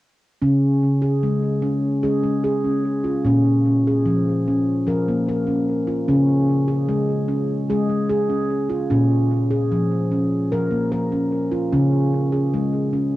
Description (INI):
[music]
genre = world meditative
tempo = 149 BPM (eighths)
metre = 7/8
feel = straight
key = Db major pentatonic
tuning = A4 = 439 Hz
[part]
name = handpan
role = arpeggios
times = 0.4-13.2 s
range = Bb2 to Bb4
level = -18 LUFS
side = equal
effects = cassette tape, analog delay
[sound]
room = wet small room reverb, RT60 0.5 s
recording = home recording on cassette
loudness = -18 LUFS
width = side -16 dB against mid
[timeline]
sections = 0.4-13.2 A section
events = none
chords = 0.4 Db5; 3.3 Bbm; 6.1 Db5; 8.9 Bbm; 11.7 Db5